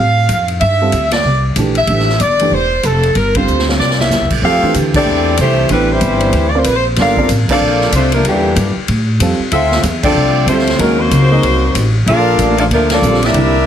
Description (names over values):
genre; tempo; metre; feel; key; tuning
jazz, big band swing; 188 BPM; 4/4; swing 61% on 8ths; F major; A4 = 440 Hz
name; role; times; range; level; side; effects
warm saxophone section; melody; 0.0-13.7 s; E3 to F5; -14 LUFS; equal; none
upright bass; bass; 0.0-13.6 s; E1 to A2; -15 LUFS; equal; none
swinging big-band drum kit; drums; 0.3-13.4 s; crash cymbal, hi-hat, kick drum, ride cymbal, snare drum; -20 LUFS; equal; none
warm baby grand piano; accompaniment; 0.8-13.5 s; D3 to Eb5; -18 LUFS; right 2 dB; none
mellow trombone section; second line; 3.8-13.7 s; Bb2 to A4; -19 LUFS; left 1 dB; none
room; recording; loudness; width
light reverb; heavily compressed radio sound, multiband compression; -10 LUFS; side -9 dB against mid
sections
0.0-4.4 A section; 4.4-13.7 B section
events
band accent 1.1, 3.3, 4.9, 7.5, 10.0, 12.9; drum fill 3.5-4.1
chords
0.0 F; 0.6 Gsus2; 1.3 C13; 1.9 Fmaj9; 3.2 G5; 3.8 C9; 4.4 Fmaj9; 5.7 Am9; 6.3 Bbadd9; 7.0 Gm9; 8.2 Em7b5; 8.9 Fadd9; 9.5 Dm9; 10.8 Ebm7; 11.4 Adim7; 12.1 Bbmaj7